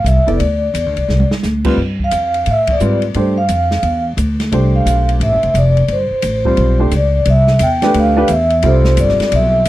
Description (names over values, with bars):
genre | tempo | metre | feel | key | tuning
modal jazz | 175 BPM | 4/4 | swing 64% on 8ths | G mixolydian | A4 = 438 Hz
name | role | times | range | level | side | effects
vibraphone with soft mallets | melody | 0.0-9.7 s | C5 to G5 | -16 LUFS | equal | none
upright bass | bass | 0.0-9.7 s | F1 to A2 | -14 LUFS | equal | none
open jazz drum kit | drums | 0.1-9.7 s | crash cymbal, hi-hat, kick drum, ride cymbal, snare drum, toms | -24 LUFS | equal | none
warm baby grand piano | accompaniment | 0.3-9.6 s | G3 to D5 | -17 LUFS | right 1 dB | none
room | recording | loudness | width
little or no reverb | dry, close 1970s-style studio recording | -11 LUFS | side -15 dB against mid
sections
0.0-7.3 A section; 7.3-9.7 B section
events
drum fill 1.1-1.4; band accent 2.6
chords
0.0 G9sus4; 7.3 Cmaj9